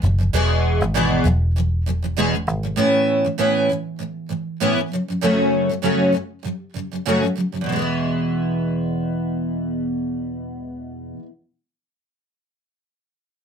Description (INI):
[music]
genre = pop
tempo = 98 BPM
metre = 4/4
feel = swing 55% on 16ths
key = E major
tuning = A4 = 441 Hz
[part]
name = picked steel-string acoustic guitar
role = accompaniment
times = 0.0-11.3 s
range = E2 to G#4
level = -20 LUFS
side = equal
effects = double-tracked left and right
[part]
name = vintage muted fingered electric bass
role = bass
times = 0.0-2.8 s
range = E1 to G#1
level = -19 LUFS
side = equal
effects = none
[sound]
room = moderate small room reverb, RT60 0.5 s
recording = none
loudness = -18 LUFS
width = side -7 dB against mid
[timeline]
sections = 0.0-7.7 A section; 7.7-10.1 B section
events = none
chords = 0.0 E; 2.8 Aadd9; 4.9 F#m; 7.7 E